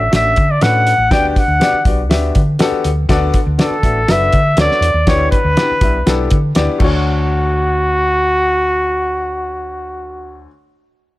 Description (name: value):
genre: uptempo 1960s-style soul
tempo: 121 BPM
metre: 4/4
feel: straight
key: D major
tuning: A4 = 440 Hz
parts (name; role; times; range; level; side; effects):
- mellow trumpet; melody; 0.0-10.5 s; F#4 to G5; -15 LUFS; equal; none
- hollow-body short-scale fingered electric bass; bass; 0.0-10.5 s; F#1 to D3; -18 LUFS; equal; none
- warm upright piano; accompaniment; 0.1-10.5 s; D2 to E5; -20 LUFS; left 4 dB; none
- cloth-damped thuddy drum kit; drums; 0.1-6.9 s; crash cymbal, hi-hat, kick drum, snare drum; -16 LUFS; equal; none
room: small room ambience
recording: none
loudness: -12 LUFS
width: side -17 dB against mid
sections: 0.0-7.1 A section; 7.1-11.0 B section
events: none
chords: 0.0 Dmaj7; 1.1 Gmaj7; 3.1 Bm7; 5.1 Em7; 6.8 Dmaj7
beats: 0.12 0.62 | 1.11 1.61 2.10 2.60 | 3.10 3.59 4.08 4.58 | 5.07 5.57 6.06 6.56 | 7.05 7.54 8.04 8.53 | 9.03 9.52 10.02